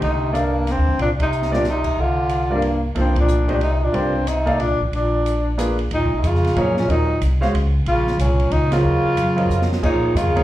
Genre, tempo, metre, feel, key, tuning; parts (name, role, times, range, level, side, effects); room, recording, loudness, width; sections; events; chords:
modal jazz; 183 BPM; 3/4; swing 62% on 8ths; C dorian, Eb dorian from 5.9 s; A4 = 440 Hz
breathy tenor saxophone; melody; 0.0-10.4 s; Bb3 to F4; -22 LUFS; left 1 dB; slapback echo
breathy bass clarinet; second line; 0.0-10.4 s; G2 to D3; -24 LUFS; right 2 dB; slapback echo
bright baby grand piano; accompaniment; 0.0-10.4 s; D3 to F5; -24 LUFS; right 1 dB; slapback echo
upright bass; bass; 0.0-10.4 s; A1 to Bb2; -21 LUFS; equal
open jazz drum kit; drums; 0.0-10.4 s; crash cymbal, hi-hat, kick drum, ride cymbal, snare drum; -30 LUFS; equal
moderate club reverb, RT60 0.5 s; live gig heard through the venue's PA, club ambience; -17 LUFS; side -14 dB against mid
0.0-5.9 A section; 5.9-10.4 B section
band accent 1.2, 3.1, 8.7; drum fill 1.3-1.6, 9.5-9.8
0.0 Cm11; 4.9 Bb7b9; 5.9 Ebm9